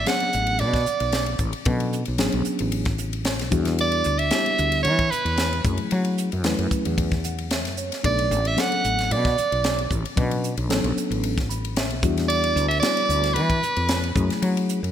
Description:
electric jazz fusion; 113 BPM; 4/4; straight; A4 = 437 Hz
edgy soprano saxophone; melody; 0.0-14.1 s; B4 to F#5; -23 LUFS; right 3 dB; ping-pong delay
woody fretless electric bass; bass; 0.0-14.9 s; A1 to F#3; -25 LUFS; equal
mellow tine electric piano; accompaniment; 0.1-14.8 s; F#3 to B5; -28 LUFS; left 2 dB; phaser
crisp fusion drum kit; drums; 0.1-14.9 s; hi-hat, kick drum, ride cymbal, snare drum; -27 LUFS; equal; gated reverb
moderate plate reverb, RT60 2.6 s; bright 1980s-style digital production; -20 LUFS; side -10 dB against mid
0.0-14.9 A section
tine electric piano fill 7.0-8.0, 11.2-12.3
0.0 Bm9; 3.5 Em9; 5.6 F#m9; 8.0 Bm9; 12.0 Em9; 14.2 F#m9
0.07 0.60 1.13 | 1.66 2.19 2.72 3.26 | 3.79 4.32 4.85 5.38 | 5.92 6.45 6.98 7.51 | 8.04 8.57 9.11 9.64 | 10.17 10.70 11.23 11.77 | 12.30 12.83 13.36 13.89 | 14.42

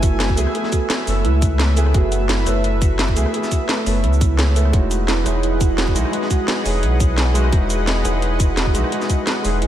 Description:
liquid drum and bass; 172 BPM; 4/4; swing 54% on 16ths; F# dorian; A4 = 440 Hz
warm grand piano; accompaniment; 0.0-9.7 s; G#3 to A4; -26 LUFS; equal; diffuse ambient delay
lush unison pad; sustained chords; 0.0-9.7 s; A3 to G#5; -25 LUFS; equal; chorus, sidechain pumping
harp-like synth pluck; arpeggios; 0.0-9.7 s; E4 to F#5; -26 LUFS; right 6 dB; chorus, phaser, diffuse ambient delay
warm sub bass; bass; 0.0-9.7 s; E1 to C#2; -18 LUFS; equal
drum and bass drum kit; drums; 0.0-9.7 s; hi-hat, rim click, shaker, snare drum; -24 LUFS; equal
electronic kick drum; drums; 0.0-9.2 s; -18 LUFS; equal
light reverb, digital ambience; -16 LUFS; side -11 dB against mid
0.0-9.7 A section
0.0 F#m11; 4.7 Emaj9
0.20 | 0.55 0.90 1.25 1.60 | 1.95 2.29 2.64 2.99 | 3.34 3.69 4.04 4.39 | 4.74 5.08 5.43 5.78 | 6.13 6.48 6.83 7.18 | 7.53 7.88 8.22 8.57 | 8.92 9.27 9.62

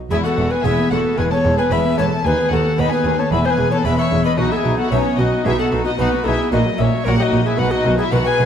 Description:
classical, baroque-style concerto movement with solo episodes; 112 BPM; 4/4; straight; E major; A4 = 439 Hz
harpsichord; accompaniment; 0.0-8.5 s; D#2 to G#4; -23 LUFS; left 1 dB
alto recorder; melody; 0.1-8.5 s; F#4 to E5; -21 LUFS; left 1 dB
rich chamber violin section; melody; 0.1-8.5 s; C#5 to C#6; -24 LUFS; left 4 dB
warm chamber violin section; second line; 0.1-8.5 s; C#4 to C#5; -24 LUFS; left 5 dB
warm chamber viola section; accompaniment; 0.1-8.5 s; D#3 to D#4; -25 LUFS; right 1 dB
rich chamber cello section; bass; 0.1-8.5 s; D#2 to B2; -23 LUFS; right 3 dB
rich chamber double bass section; bass; 0.1-8.5 s; E1 to D#2; -23 LUFS; right 2 dB
wet scoring stage reverb, RT60 1.9 s; dark, warm production; -15 LUFS; side -8 dB against mid
0.1-8.5 A section
0.1 E; 2.3 B/D#; 3.3 E; 4.4 B; 6.5 F#/A#; 7.6 B
| 0.11 0.65 1.18 1.72 | 2.25 2.79 3.32 3.86 | 4.39 4.92 5.46 5.99 | 6.52 7.05 7.58 8.12

